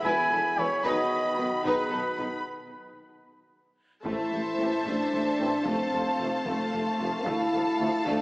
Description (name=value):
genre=cinematic, epic orchestral film score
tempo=75 BPM (dotted quarters)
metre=6/8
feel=straight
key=A minor from 4.1 s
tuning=A4 = 442 Hz
part: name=warm symphonic violin section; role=melody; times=0.0-8.2 s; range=A5 to B5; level=-35 LUFS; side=left 1 dB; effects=none
part: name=warm symphonic violin section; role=second line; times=0.0-8.2 s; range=A4 to F5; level=-34 LUFS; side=equal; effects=none
part: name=warm symphonic viola section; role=accompaniment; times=0.0-8.2 s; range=A3 to E4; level=-36 LUFS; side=equal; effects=none
part: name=dark French horn section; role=sustained chords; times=0.0-8.2 s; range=A3 to G#4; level=-30 LUFS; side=equal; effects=none
part: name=warm trombone section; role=sustained chords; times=0.0-7.9 s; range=D#3 to C4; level=-37 LUFS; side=equal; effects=none
part: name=mellow trumpet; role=stabs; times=0.0-2.4 s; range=B4 to G#5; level=-27 LUFS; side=equal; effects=none
part: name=rich studio cello section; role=bass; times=0.0-8.1 s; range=D2 to B2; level=-40 LUFS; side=equal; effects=none
part: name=warm symphonic double bass section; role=bass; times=0.0-8.1 s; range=E1 to D2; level=-44 LUFS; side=equal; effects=none
part: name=warm tuba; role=bass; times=0.0-8.2 s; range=E1 to D2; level=-39 LUFS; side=equal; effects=none
part: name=taiko ensemble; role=drums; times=0.8-8.2 s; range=none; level=-43 LUFS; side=equal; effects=none
part: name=rich symphonic string section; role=sustained chords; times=4.1-8.2 s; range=A3 to A5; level=-34 LUFS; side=equal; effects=none
room=wet concert hall reverb, RT60 2.3 s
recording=small speaker sound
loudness=-25 LUFS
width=side -23 dB against mid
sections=0.0-4.1 A section; 4.1-8.2 B section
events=break 2.4-4.1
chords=0.0 E; 0.8 B; 2.4 N.C.; 4.1 Am; 5.7 F; 7.3 Dm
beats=0.04 | 0.84 1.65 | 2.45 3.25 | 4.05 4.86 | 5.66 6.46 | 7.26 8.07